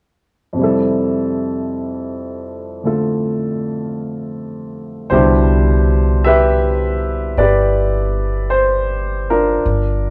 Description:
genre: jazz ballad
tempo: 53 BPM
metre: 4/4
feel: swing 68% on 8ths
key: C major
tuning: A4 = 440 Hz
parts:
  - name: warm grand piano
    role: accompaniment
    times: 0.5-10.1 s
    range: F2 to E5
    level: -19 LUFS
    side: equal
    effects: none
  - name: upright bass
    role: bass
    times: 5.1-10.1 s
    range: G1 to C2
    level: -19 LUFS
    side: equal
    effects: none
room: light reverb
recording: none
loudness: -17 LUFS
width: mono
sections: 0.6-5.1 A section; 5.1-10.1 B section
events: none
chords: 0.6 Fmaj7; 5.1 Cmaj9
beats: | 0.58 1.71 2.84 3.96 | 5.10 6.23 7.37 8.50 | 9.63

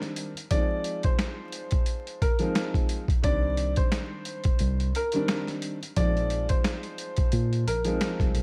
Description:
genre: hip hop, boom-bap hip-hop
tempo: 88 BPM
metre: 4/4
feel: swing 55% on 16ths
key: C minor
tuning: A4 = 439 Hz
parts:
  - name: dark baby grand piano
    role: accompaniment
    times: 0.0-8.4 s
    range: Eb3 to Eb4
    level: -36 LUFS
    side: equal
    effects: cassette tape
  - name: boom bap sampler-style drum kit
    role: drums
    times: 0.0-8.4 s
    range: hi-hat, kick drum, snare drum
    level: -29 LUFS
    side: equal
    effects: none
  - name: warm upright piano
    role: melody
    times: 0.5-8.2 s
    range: Bb4 to D5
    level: -34 LUFS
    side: equal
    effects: analog delay
  - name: mellow tine electric piano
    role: bass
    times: 3.2-8.4 s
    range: Bb1 to Bb2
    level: -30 LUFS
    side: equal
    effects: none
room: little or no reverb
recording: vinyl crackle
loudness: -27 LUFS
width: mono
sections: 0.0-8.4 A section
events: none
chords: 0.0 Cmadd9; 0.5 Fm7; 3.2 Cmadd9; 6.0 Bb7sus4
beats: | 0.51 1.19 1.88 2.56 | 3.24 3.92 4.60 5.28 | 5.97 6.65 7.33 8.01

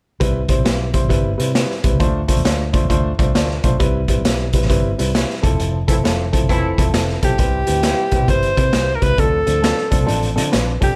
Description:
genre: uptempo 1960s-style soul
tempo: 134 BPM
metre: 4/4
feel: swing 64% on 8ths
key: C major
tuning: A4 = 440 Hz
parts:
  - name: dark upright piano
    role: accompaniment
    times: 0.2-10.9 s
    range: F3 to D5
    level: -24 LUFS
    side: equal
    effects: none
  - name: vintage muted fingered electric bass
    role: bass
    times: 0.2-11.0 s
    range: E1 to D3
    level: -24 LUFS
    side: equal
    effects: none
  - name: raw garage drum kit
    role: drums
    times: 0.2-10.9 s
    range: hi-hat, kick drum, snare drum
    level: -20 LUFS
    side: equal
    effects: none
  - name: dark horn section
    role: second line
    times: 5.9-6.8 s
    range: E3 to E4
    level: -27 LUFS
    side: equal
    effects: none
  - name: clear alto saxophone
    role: melody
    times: 7.2-11.0 s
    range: G4 to C5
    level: -21 LUFS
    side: equal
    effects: none
room: light reverb, studio reverb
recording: none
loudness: -17 LUFS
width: mono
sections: 0.2-7.4 A section; 7.4-11.0 B section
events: upright piano fill 3.1-3.8; band accent 5.6-7.4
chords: 0.2 Cmaj7; 2.0 Dm7; 3.8 Cmaj7; 5.4 Fmaj7; 7.4 Cmaj7; 9.2 Dm7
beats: | 0.21 0.66 1.10 1.55 | 2.00 2.45 2.90 3.35 | 3.80 4.25 4.70 5.15 | 5.60 6.04 6.49 6.94 | 7.39 7.84 8.29 8.74 | 9.19 9.64 10.09 10.53

